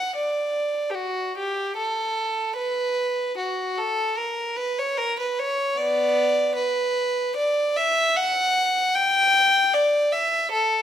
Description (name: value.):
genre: classical, baroque-style suite movement for unaccompanied violin.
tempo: 75 BPM.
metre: 4/4.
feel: rubato.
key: D major.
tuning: A4 = 440 Hz.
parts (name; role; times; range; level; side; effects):
rich violin; solo; 0.0-10.8 s; B3 to G5; -20 LUFS; equal; none.
room: moderate recital hall reverb, RT60 1.3 s.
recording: minimal, uncompressed stereo recording.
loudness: -20 LUFS.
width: side -10 dB against mid.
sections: 0.0-10.8 A section.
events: none.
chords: none.